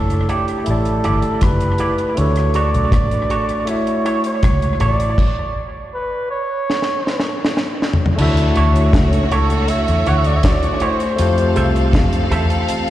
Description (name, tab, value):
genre	lovers rock reggae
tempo	80 BPM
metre	4/4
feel	straight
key	D major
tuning	A4 = 440 Hz
part	breathy flugelhorn	melody	0.0-11.9 s	G4 to F#5	-23 LUFS	right 1 dB	tape echo, slapback echo
part	barky tine electric piano	accompaniment	0.0-12.9 s	A3 to E5	-22 LUFS	left 1 dB	overdrive, dub echo, slapback echo
part	vintage muted fingered electric bass	bass	0.0-12.7 s	F#1 to F2	-17 LUFS	equal	none
part	deep reggae drum kit	drums	0.1-12.9 s	crash cymbal, hi-hat, kick drum, rim click, snare drum, toms	-19 LUFS	equal	dub echo
part	electric guitar with an envelope filter	stabs	0.3-12.5 s	E4 to E5	-25 LUFS	right 4 dB	harmonic tremolo, dub echo, slapback echo
part	warm studio string section	second line	8.2-12.9 s	A3 to F5	-23 LUFS	equal	slapback echo
room	light reverb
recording	live gig heard through the venue's PA, recital hall reverb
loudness	-14 LUFS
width	side -13 dB against mid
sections	0.0-8.2 A section; 8.2-12.9 B section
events	stop 5.2-8.2; drum fill 6.7-8.2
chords	0.0 Bm11 (rootless); 0.7 A7sus4; 2.2 Dmaj7; 3.7 F#m7; 5.2 N.C.; 8.2 Dmaj9; 11.2 Fmaj9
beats	0.66 1.42 | 2.17 2.92 3.67 4.43 | 5.18 5.93 6.68 7.43 | 8.18 8.94 9.69 10.44 | 11.19 11.94 12.69